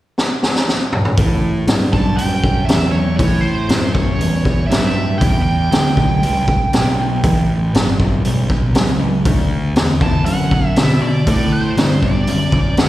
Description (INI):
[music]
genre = blues rock power trio and southern rock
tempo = 119 BPM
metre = 4/4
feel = straight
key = A mixolydian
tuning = A4 = 440 Hz
[part]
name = raw garage drum kit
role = drums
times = 0.2-12.9 s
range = hi-hat, kick drum, snare drum, toms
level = -17 LUFS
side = equal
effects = none
[part]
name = overdriven semi-hollow guitar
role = riff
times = 1.2-12.9 s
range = A2 to C4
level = -20 LUFS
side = equal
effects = none
[part]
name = fuzz picked electric bass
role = bass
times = 1.2-12.9 s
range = G1 to B2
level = -18 LUFS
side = equal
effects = overdrive
[part]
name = bluesy overdriven lead guitar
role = melody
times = 1.9-12.9 s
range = C5 to A5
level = -22 LUFS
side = right 3 dB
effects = wah, distortion, slapback echo
[sound]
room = small room reverb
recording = live gig heard through the venue's PA, recital hall reverb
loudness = -13 LUFS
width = side -15 dB against mid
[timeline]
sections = 0.0-1.2 A section; 1.2-12.9 B section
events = drum fill 0.2-1.2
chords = 0.0 N.C.; 1.2 A7(no3); 9.2 D7